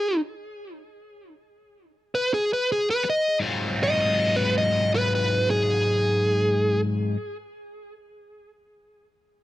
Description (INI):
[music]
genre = blues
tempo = 107 BPM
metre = 4/4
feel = swing 65% on 8ths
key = Ab mixolydian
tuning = A4 = 440 Hz
[part]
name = dark smooth lead guitar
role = melody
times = 0.0-6.8 s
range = Ab4 to D#5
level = -23 LUFS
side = equal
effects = overdrive, analog delay
[part]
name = cranked stack guitar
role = riff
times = 3.0-7.2 s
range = Ab2 to F4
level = -24 LUFS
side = left 1 dB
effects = overdrive, phaser
[sound]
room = moderate club reverb, RT60 0.5 s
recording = none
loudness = -21 LUFS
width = side -15 dB against mid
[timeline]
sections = 0.0-3.4 A section; 3.4-5.7 B section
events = stop 0.0-2.9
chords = 0.0 N.C.; 2.9 Gaug; 3.4 Ab6